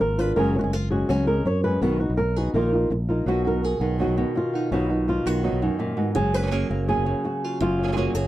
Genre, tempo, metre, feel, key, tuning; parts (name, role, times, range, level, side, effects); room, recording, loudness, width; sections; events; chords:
flamenco; 166 BPM; 4/4; straight; A4 = 439 Hz
flamenco guitar; melody; 0.0-8.3 s; F#2 to Db5; -23 LUFS; equal
fingered electric bass; bass; 0.0-8.3 s; Gb1 to Gb2; -25 LUFS; equal
flamenco guitar; stabs; 3.3-8.3 s; B2 to Ab4; -28 LUFS; right 5 dB
little or no reverb; dry, close 1970s-style studio recording; -21 LUFS; side -14 dB against mid
0.0-3.3 A section; 3.3-8.3 B section
0.4 Gbsus2; 1.8 B; 2.5 Bbsus4; 3.3 B; 6.2 Gbadd9